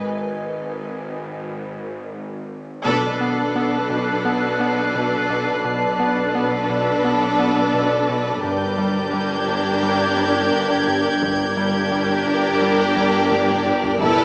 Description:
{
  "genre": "cinematic, suspense film score",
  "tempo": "86 BPM",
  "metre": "4/4",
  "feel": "straight",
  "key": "B phrygian",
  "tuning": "A4 = 439 Hz",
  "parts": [
    { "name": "granular cloud pad", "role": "sustained chords", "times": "0.0-14.2 s", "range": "G4 to A5", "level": "-25 LUFS", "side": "equal", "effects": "built-in reverb" },
    { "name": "bowed-like drone", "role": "drone", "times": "0.0-14.2 s", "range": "G1 to E2", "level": "-29 LUFS", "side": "equal", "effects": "built-in reverb" },
    { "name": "rich studio violin section", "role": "second line", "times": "2.8-14.2 s", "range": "G4 to A4", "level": "-24 LUFS", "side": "equal", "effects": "none" },
    { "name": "warm studio violin section", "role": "texture", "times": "2.8-14.2 s", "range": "E6 to C7", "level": "-27 LUFS", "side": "equal", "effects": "none" },
    { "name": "rich studio violin section", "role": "melody", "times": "2.9-14.2 s", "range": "Bb4 to B4", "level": "-27 LUFS", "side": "equal", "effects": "none" },
    { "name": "warm studio viola section", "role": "accompaniment", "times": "2.9-14.2 s", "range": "D4 to E4", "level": "-24 LUFS", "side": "equal", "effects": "none" },
    { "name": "gritty driven synth bass", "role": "riff", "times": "2.9-14.2 s", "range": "E2 to B3", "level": "-25 LUFS", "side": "equal", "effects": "none" },
    { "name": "dark studio cello section", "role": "bass", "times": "2.9-14.2 s", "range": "E2 to B2", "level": "-29 LUFS", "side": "equal", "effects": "none" },
    { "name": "warm studio double bass section", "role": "bass", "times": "2.9-14.2 s", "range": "E1 to B1", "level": "-32 LUFS", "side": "equal", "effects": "none" },
    { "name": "taiko ensemble", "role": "drums", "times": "2.9-4.2, 8.4-14.2 s", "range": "none", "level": "-33 LUFS", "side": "equal", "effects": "none" }
  ],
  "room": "wet scoring stage reverb, RT60 2.1 s",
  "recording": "small speaker sound",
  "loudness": "-17 LUFS",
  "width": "side -35 dB against mid",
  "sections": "0.0-2.9 A section; 2.9-14.2 A section",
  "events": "break 0.1-2.9; band accent 2.9-3.5; drum fill 13.3-14.0",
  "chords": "0.0 N.C.; 2.9 Bm7; 8.4 Gm"
}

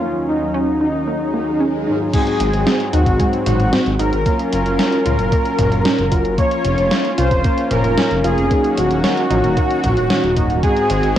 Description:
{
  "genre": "synthwave",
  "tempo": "113 BPM",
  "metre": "4/4",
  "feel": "straight",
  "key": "unclear",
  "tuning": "A4 = 436 Hz",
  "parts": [
    { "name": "soft supersaw", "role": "melody", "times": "0.0-11.2 s", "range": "Eb4 to Db5", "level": "-20 LUFS", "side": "left 1 dB", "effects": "vintage 12-bit sampler grit, cassette tape, tape echo" },
    { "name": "brassy analog pad", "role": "sustained chords", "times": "0.0-11.2 s", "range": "Eb2 to Bb4", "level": "-23 LUFS", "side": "equal", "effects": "chorus, vintage 12-bit sampler grit, sidechain pumping, cassette tape" },
    { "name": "wide unison pluck", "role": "arpeggios", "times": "0.0-11.2 s", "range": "Ab3 to F4", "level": "-24 LUFS", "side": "right 2 dB", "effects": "cassette tape, tape echo" },
    { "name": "analog synth brass", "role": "stabs", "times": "0.0-11.2 s", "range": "Ab2 to Ab4", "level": "-25 LUFS", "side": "left 1 dB", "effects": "chorus, cassette tape" },
    { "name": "swell", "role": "sound effects", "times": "1.3-2.1 s", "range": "none", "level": "-26 LUFS", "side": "right 1 dB", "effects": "none" },
    { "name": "airy dreamy lead", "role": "second line", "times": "2.1-11.2 s", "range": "Gb5 to Db6", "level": "-28 LUFS", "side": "equal", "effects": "chorus, cassette tape, tape echo" },
    { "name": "electronic kick drum", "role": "drums", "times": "2.1-10.7 s", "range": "none", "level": "-19 LUFS", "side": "equal", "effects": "cassette tape" },
    { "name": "gated 80s digital drum machine", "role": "drums", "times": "2.1-11.2 s", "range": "crash cymbal, hi-hat, snare drum, toms", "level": "-22 LUFS", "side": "left 1 dB", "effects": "gated reverb, gated reverb snare, low-pass filter on hats, cassette tape, low-pass filter on cymbals, low-pass filter on snare, low-pass filter on toms, low-pass filter on room" },
    { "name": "dark detuned saw bass", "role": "bass", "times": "2.4-11.1 s", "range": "Eb1 to Eb2", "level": "-20 LUFS", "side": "equal", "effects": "none" }
  ],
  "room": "moderate booth ambience, RT60 0.2 s",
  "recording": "home recording on cassette",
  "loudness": "-14 LUFS",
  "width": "side -11 dB against mid",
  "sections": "0.0-2.1 A section; 2.1-11.2 B section",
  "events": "swell 1.3-2.1",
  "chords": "0.0 Ebm7; 2.1 Ab7; 4.3 Gbmaj7; 6.4 Bbm/F; 8.5 Ebm7; 10.6 Ab7"
}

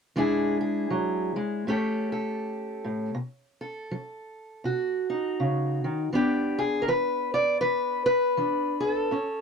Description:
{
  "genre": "acoustic country blues, solo or duo",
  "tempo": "80 BPM",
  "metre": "4/4",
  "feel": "swing 60% on 8ths",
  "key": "unclear",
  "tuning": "A4 = 439 Hz",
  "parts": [
    { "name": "fingerpicked steel-string acoustic guitar", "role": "solo", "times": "0.2-9.4 s", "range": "A2 to D5", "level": "-25 LUFS", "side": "equal", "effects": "none" }
  ],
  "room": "moderate booth ambience, RT60 0.1 s",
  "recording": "dry, close 1970s-style studio recording",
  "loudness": "-24 LUFS",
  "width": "side -5 dB against mid",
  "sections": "0.1-6.1 A section; 6.1-9.4 B section",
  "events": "none",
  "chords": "0.1 E7; 1.6 A7; 3.1 B7; 6.1 E5"
}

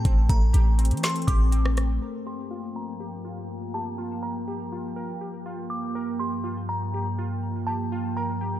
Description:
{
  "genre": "hip hop, atmospheric cloud-rap",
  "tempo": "122 BPM",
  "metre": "4/4",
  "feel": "half-time",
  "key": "G minor",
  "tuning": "A4 = 445 Hz",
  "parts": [
    { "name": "delicate synth tine bell", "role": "melody", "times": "0.0-8.6 s", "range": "A5 to D6", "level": "-34 LUFS", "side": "equal", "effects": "chorus, low-pass filter, tape echo" },
    { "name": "glassy FM pad", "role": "sustained chords", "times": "0.0-8.6 s", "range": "G2 to G5", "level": "-30 LUFS", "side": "equal", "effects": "ensemble chorus, built-in reverb, sidechain pumping, low-pass filter" },
    { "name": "glassy wavetable pluck", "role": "arpeggios", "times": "0.0-8.6 s", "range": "A3 to Bb4", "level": "-40 LUFS", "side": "right 1 dB", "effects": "chorus, low-pass filter, tape echo" },
    { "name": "warm 808-style bass", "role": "bass", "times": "0.0-2.0 s", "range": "A1 to E3", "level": "-21 LUFS", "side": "equal", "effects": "none" },
    { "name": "smooth R&B drum kit", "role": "drums", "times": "0.1-1.9 s", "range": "hi-hat, kick drum, rim click, snare drum", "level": "-24 LUFS", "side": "equal", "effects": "none" }
  ],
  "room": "little or no reverb",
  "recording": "none",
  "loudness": "-24 LUFS",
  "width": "side -12 dB against mid",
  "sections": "0.0-2.0 A section; 2.0-8.6 B section",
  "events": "filter sweep 2.0-8.6",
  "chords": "0.0 Am7; 2.0 Gm7"
}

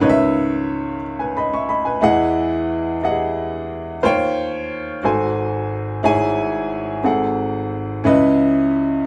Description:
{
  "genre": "gospel",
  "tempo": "60 BPM (dotted quarters)",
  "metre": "6/8",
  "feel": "straight",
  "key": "C# minor",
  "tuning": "A4 = 440 Hz",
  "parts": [
    { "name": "warm upright piano", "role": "solo", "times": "0.0-9.1 s", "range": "G#1 to C#6", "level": "-19 LUFS", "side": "equal", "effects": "none" }
  ],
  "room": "wet small room reverb, RT60 0.6 s",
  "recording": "band playing live in one room",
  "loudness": "-20 LUFS",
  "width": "mono",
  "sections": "0.0-9.1 A section",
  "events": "none",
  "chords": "0.0 C#m9; 2.0 Emaj9; 4.0 D#13; 5.0 G#7b9; 6.0 C#m/G#; 7.0 G#7b9; 8.1 C#m9"
}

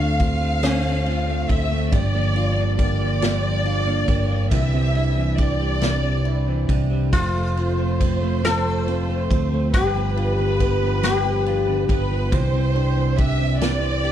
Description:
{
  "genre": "six-eight pop ballad",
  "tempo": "46 BPM (dotted quarters)",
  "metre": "6/8",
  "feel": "straight",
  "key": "unclear",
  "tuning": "A4 = 440 Hz",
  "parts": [
    { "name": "sitar", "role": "melody", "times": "0.0-1.6, 7.1-12.0 s", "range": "C4 to A4", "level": "-25 LUFS", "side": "left 4 dB", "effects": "slapback echo" },
    { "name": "dark studio violin section", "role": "second line", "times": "0.0-14.1 s", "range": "B4 to F5", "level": "-27 LUFS", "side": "right 1 dB", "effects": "none" },
    { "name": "direct-recorded clean electric guitar", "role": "accompaniment", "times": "0.0-14.1 s", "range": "G2 to G4", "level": "-26 LUFS", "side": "equal", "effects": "double-tracked left and right" },
    { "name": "fingerpicked plugged-in steel-string acoustic guitar", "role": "arpeggios", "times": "0.0-14.1 s", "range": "E3 to G4", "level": "-30 LUFS", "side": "right 6 dB", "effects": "none" },
    { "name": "fingered electric bass", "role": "bass", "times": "0.0-14.1 s", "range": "F1 to D2", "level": "-22 LUFS", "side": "equal", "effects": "none" },
    { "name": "unplugged drum kit", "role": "drums", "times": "0.2-14.1 s", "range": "kick drum, ride cymbal, snare drum", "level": "-25 LUFS", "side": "equal", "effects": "none" }
  ],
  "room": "little or no reverb",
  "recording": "none",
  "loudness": "-18 LUFS",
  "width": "side -10 dB against mid",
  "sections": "0.0-14.1 A section",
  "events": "none",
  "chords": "0.0 Dm7; 1.9 Gm7; 4.5 Cadd9; 7.1 F; 9.7 G7; 12.3 Cadd9"
}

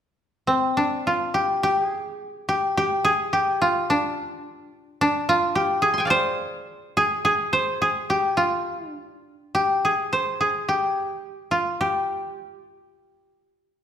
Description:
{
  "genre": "japanese traditional",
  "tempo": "53 BPM",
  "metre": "2/4",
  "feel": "rubato",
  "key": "G in sen",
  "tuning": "A4 = 440 Hz",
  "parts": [
    { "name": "koto", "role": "solo", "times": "0.5-13.8 s", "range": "C4 to C6", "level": "-21 LUFS", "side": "equal", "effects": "none" }
  ],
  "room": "moderate recital hall reverb, RT60 1.6 s",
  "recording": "recorded in a church or concert hall",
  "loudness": "-20 LUFS",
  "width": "side -9 dB against mid",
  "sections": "0.5-13.8 A section",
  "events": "none",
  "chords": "none"
}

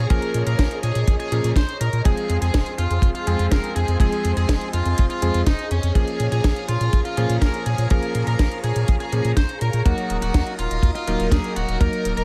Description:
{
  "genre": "italo disco",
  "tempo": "123 BPM",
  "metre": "4/4",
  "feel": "straight",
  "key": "Bb minor",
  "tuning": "A4 = 440 Hz",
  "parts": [
    { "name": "smooth overdriven lead guitar", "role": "melody", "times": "0.0-12.2 s", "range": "Db4 to C5", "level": "-30 LUFS", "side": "equal", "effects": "delay" },
    { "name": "phased string machine", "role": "sustained chords", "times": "0.0-12.2 s", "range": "Ab4 to F6", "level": "-34 LUFS", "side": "equal", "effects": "ensemble chorus, phaser" },
    { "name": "bright electric grand piano", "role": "stabs", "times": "0.0-12.2 s", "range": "F3 to Bb4", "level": "-30 LUFS", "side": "equal", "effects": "none" },
    { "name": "round analog bass", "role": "bass", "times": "0.0-12.2 s", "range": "Eb1 to Bb2", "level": "-25 LUFS", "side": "equal", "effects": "none" },
    { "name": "house drum kit", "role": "drums", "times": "0.1-12.2 s", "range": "hi-hat, snare drum", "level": "-32 LUFS", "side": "equal", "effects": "overdrive" },
    { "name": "kick drum", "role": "drums", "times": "0.1-11.9 s", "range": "none", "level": "-21 LUFS", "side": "equal", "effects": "none" }
  ],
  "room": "digital ambience",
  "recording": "none",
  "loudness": "-21 LUFS",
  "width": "mono",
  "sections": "0.0-12.2 A section",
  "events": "none",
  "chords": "0.0 Bbm7; 2.1 Fm; 6.0 Bbm7; 9.9 Ebm"
}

